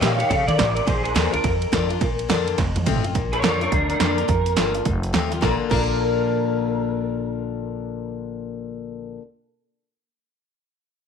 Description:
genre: rockabilly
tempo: 211 BPM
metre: 4/4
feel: swing 62% on 8ths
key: Bb major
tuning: A4 = 441 Hz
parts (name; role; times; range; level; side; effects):
- electric guitar through a small old amp; melody; 0.0-9.2 s; D4 to F5; -24 LUFS; right 1 dB; ensemble chorus, tape echo
- picked steel-string acoustic guitar; accompaniment; 0.0-9.2 s; F2 to G4; -25 LUFS; left 10 dB; none
- upright bass; bass; 0.0-9.2 s; F1 to Eb3; -27 LUFS; equal; none
- punchy analog drum machine; drums; 0.0-5.8 s; crash cymbal, hi-hat, kick drum, ride cymbal, snare drum, toms; -23 LUFS; right 4 dB; none
room: light reverb, digital ambience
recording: 1960s-style stereo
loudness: -19 LUFS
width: side -6 dB against mid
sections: 0.0-3.1 A section; 3.1-5.4 B section; 5.4-7.7 C section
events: drum fill 2.6-3.1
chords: 0.0 Eb; 0.9 Bb; 2.6 F; 3.1 Bb; 4.9 F; 5.4 Bb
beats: 0.02 0.30 0.59 | 0.87 1.16 1.44 1.72 | 2.01 2.29 2.58 2.86 | 3.15 3.43 3.71 4.00 | 4.29 4.57 4.85 5.14 | 5.42 5.71 5.99 6.28 | 6.56 6.85 7.13 7.42

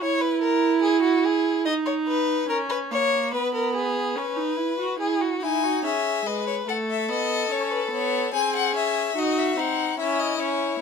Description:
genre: classical, baroque-style fugue for string quartet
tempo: 72 BPM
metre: 4/4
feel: straight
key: C# minor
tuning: A4 = 441 Hz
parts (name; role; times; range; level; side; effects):
- rich violin; second line; 0.0-10.8 s; D#4 to D#5; -26 LUFS; left 4 dB; none
- clear viola; accompaniment; 0.0-10.8 s; G#3 to F#4; -25 LUFS; right 5 dB; none
- clear violin; melody; 5.4-10.8 s; B4 to G#5; -26 LUFS; left 9 dB; none
room: light reverb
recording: minimal, uncompressed stereo recording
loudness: -21 LUFS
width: side -6 dB against mid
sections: 0.0-5.0 A section; 5.0-10.8 B section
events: none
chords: 0.0 C#m/E (rootless); 1.7 D#5; 3.3 G#m/B; 5.0 C#m; 6.7 F#m/A (rootless); 8.3 G#7/B#; 10.0 C#m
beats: 0.00 0.83 | 1.66 2.49 3.32 4.16 | 5.00 5.84 6.68 7.51 | 8.34 9.16 9.99 10.81

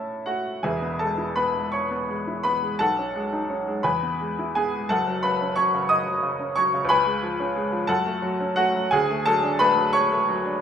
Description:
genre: classical, romantic character piece for solo piano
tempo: 50-61 BPM (dotted quarters)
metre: 6/8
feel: rubato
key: E major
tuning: A4 = 441 Hz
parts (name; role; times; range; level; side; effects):
- bright upright piano; solo; 0.0-10.6 s; E1 to D#6; -21 LUFS; equal; none
room: moderate recital hall reverb, RT60 1.4 s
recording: minimal, uncompressed stereo recording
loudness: -21 LUFS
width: side -8 dB against mid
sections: 0.6-10.6 A section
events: none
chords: 0.0 A; 0.6 E; 2.8 B13; 3.8 E; 4.9 F#m; 6.9 C#7; 7.9 F#m; 8.9 D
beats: | 0.65 1.74 | 2.81 3.85 | 4.90 5.90 | 6.91 7.90 | 8.93 9.96

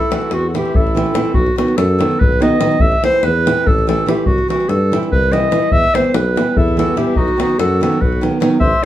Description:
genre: balkan folk, Balkan wedding band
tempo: 289 BPM (eighths)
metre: 7/8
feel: straight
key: unclear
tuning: A4 = 440 Hz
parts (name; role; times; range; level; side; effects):
- clear clarinet; melody; 0.0-8.9 s; F#4 to E5; -17 LUFS; equal; none
- accordion; second line; 0.0-1.3, 6.6-8.8 s; C4 to C5; -24 LUFS; left 2 dB; none
- davul; percussion; 0.0-8.8 s; none; -18 LUFS; left 1 dB; none
- nylon-string guitar; accompaniment; 0.1-8.9 s; D#3 to E4; -19 LUFS; right 2 dB; none
- warm tuba; bass; 0.3-8.7 s; A1 to G2; -19 LUFS; equal; none
room: wet studio reverb, RT60 0.6 s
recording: heard from further back in the room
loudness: -12 LUFS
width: side -13 dB against mid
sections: 0.0-1.3 A section; 1.3-8.9 A section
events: none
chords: 0.0 Am; 1.3 B; 2.8 Am; 4.3 C; 5.7 Em; 7.2 B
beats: 0.09 0.30 0.51 0.71 0.92 1.13 | 1.34 1.55 1.76 1.97 2.18 2.38 2.59 | 2.80 3.01 3.22 3.43 3.63 3.84 4.05 | 4.26 4.47 4.67 4.88 5.09 5.30 5.50 | 5.71 5.92 6.12 6.33 6.54 6.74 6.95 | 7.16 7.36 7.57 7.78 7.98 8.19 8.39 | 8.60 8.80

